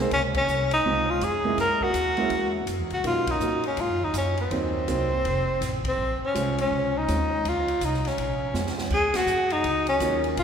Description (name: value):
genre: jazz, small-group swing and bop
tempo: 164 BPM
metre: 4/4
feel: swing 63% on 8ths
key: Bb minor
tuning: A4 = 440 Hz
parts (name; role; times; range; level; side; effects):
- breathy tenor saxophone; melody; 0.0-10.4 s; C4 to Bb4; -24 LUFS; left 1 dB; none
- warm baby grand piano; accompaniment; 0.0-10.4 s; F#3 to C5; -31 LUFS; right 3 dB; none
- upright bass; bass; 0.0-10.4 s; F1 to B2; -30 LUFS; equal; none
- open jazz drum kit; drums; 0.1-10.4 s; crash cymbal, hi-hat, kick drum, ride cymbal, snare drum; -36 LUFS; equal; none
room: wet church reverb, RT60 3.4 s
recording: recorded in a church or concert hall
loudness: -22 LUFS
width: side -7 dB against mid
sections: 0.0-8.9 A section; 8.9-10.4 B section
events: band accent 0.3, 3.2, 5.8, 9.1; drum fill 8.5-8.9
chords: 0.1 Dbmaj9; 1.6 Gb7(no3); 3.0 Bmaj9; 4.5 Cm7b5; 5.2 F; 6.0 Bbm7; 8.9 Ebm7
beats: | 0.11 0.48 0.84 1.21 | 1.58 1.94 2.31 2.68 | 3.04 3.41 3.78 4.14 | 4.51 4.88 5.24 5.61 | 5.97 6.34 6.71 7.07 | 7.44 7.81 8.17 8.54 | 8.90 9.27 9.63 10.00 | 10.37